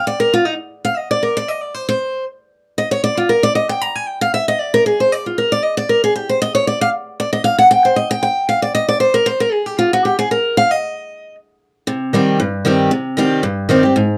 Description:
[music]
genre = bluegrass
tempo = 231 BPM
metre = 4/4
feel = swing 53% on 8ths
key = C minor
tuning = A4 = 440 Hz
[part]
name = picked old ladder-braced acoustic guitar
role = solo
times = 0.0-14.2 s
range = G2 to Bb5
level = -16 LUFS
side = equal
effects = none
[sound]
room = light reverb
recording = dry, close 1970s-style studio recording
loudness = -16 LUFS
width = mono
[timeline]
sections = 0.0-11.9 A section; 11.9-14.2 B section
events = steel-string acoustic guitar solo 0.0-11.9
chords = 0.0 N.C.; 11.9 Cm

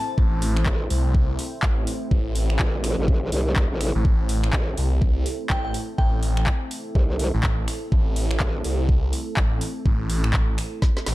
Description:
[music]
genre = bass house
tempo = 124 BPM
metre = 4/4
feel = swing 60% on 16ths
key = A minor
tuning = A4 = 439 Hz
[part]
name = glassy synth bell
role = melody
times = 0.0-0.3, 5.5-6.4 s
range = G5 to A5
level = -32 LUFS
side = left 2 dB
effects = chorus, tremolo, tape echo
[part]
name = dark analog pad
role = sustained chords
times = 0.0-11.1 s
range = A3 to C5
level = -33 LUFS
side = right 1 dB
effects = chorus, sidechain pumping
[part]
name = phased detuned saw bass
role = bass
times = 0.2-11.1 s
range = A1 to C2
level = -23 LUFS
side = equal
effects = phaser, overdrive, sidechain pumping
[part]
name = electronic kick drum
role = drums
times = 0.2-10.9 s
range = none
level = -21 LUFS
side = equal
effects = none
[part]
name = garage drum kit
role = drums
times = 0.4-11.1 s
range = finger snaps, handclaps, hi-hat, snare drum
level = -30 LUFS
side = equal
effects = none
[part]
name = growl bass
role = bass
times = 0.7-8.6 s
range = A1 to C2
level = -24 LUFS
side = equal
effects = chorus, tube saturation, sidechain pumping
[sound]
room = digital ambience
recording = dark, warm production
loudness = -20 LUFS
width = side -18 dB against mid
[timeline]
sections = 0.0-11.1 A section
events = drum fill 10.8-11.1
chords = 0.0 Am

